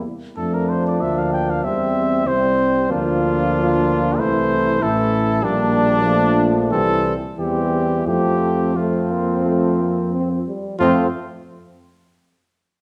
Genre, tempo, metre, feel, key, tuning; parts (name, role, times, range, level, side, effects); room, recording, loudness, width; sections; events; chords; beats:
classical, brass quintet; 87-97 BPM; 4/4; rubato; F major; A4 = 440 Hz
mellow trumpet; melody; 0.0-11.1 s; D4 to G5; -24 LUFS; equal
dark trumpet; second line; 0.0-11.1 s; C4 to E4; -28 LUFS; equal
mellow French horn; accompaniment; 0.0-11.1 s; G3 to C4; -26 LUFS; equal
mellow tuba; bass; 0.0-11.1 s; A1 to F2; -25 LUFS; equal
warm trombone; accompaniment; 0.4-11.1 s; E3 to G3; -26 LUFS; equal
wet recital hall reverb, RT60 1.4 s; -19 LUFS; mono
0.0-10.8 A section; 10.8-12.8 B section
0.4 Dm/F; 1.6 C/E; 2.9 Bb/D; 4.2 Am/C; 5.4 Gm/Bb; 6.7 C; 8.1 F
| 0.37 1.01 1.65 2.27 | 2.90 3.54 4.19 4.82 | 5.44 6.06 6.72 7.38 | 8.06 8.76 9.45 10.13 | 10.80